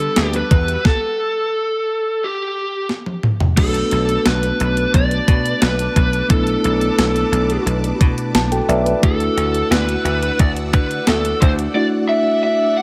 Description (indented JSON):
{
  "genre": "1980s-style pop",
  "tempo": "88 BPM",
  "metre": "4/4",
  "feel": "straight",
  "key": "unclear",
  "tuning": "A4 = 440 Hz",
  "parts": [
    { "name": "lead guitar through a small cranked amp", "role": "melody", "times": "0.0-12.8 s", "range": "G4 to F#5", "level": "-22 LUFS", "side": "equal", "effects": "overdrive, digital delay" },
    { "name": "mellow tine electric piano", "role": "accompaniment", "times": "0.0-12.8 s", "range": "G3 to A5", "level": "-24 LUFS", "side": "equal", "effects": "none" },
    { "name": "string machine, cellos", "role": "sustained chords", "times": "0.0-12.8 s", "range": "G4 to F#6", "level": "-31 LUFS", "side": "equal", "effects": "phaser, ensemble chorus" },
    { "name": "dry thumbed slap bass", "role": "bass", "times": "0.0-11.7 s", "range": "B1 to D3", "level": "-23 LUFS", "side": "equal", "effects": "none" },
    { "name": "clean 12-bit digital drum machine", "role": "drums", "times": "0.0-11.7 s", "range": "crash cymbal, hi-hat, kick drum, snare drum, toms", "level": "-19 LUFS", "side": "equal", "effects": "overdrive, gated reverb" }
  ],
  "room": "light reverb, digital ambience",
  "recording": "none",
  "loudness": "-17 LUFS",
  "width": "mono",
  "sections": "0.0-3.6 A section; 3.6-12.8 B section",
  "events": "stop 0.8-3.6; drum fill 2.9-3.6; tine electric piano fill 8.0-9.0",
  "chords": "0.0 G; 0.5 Emadd9; 3.6 Bm7; 9.0 Dadd9"
}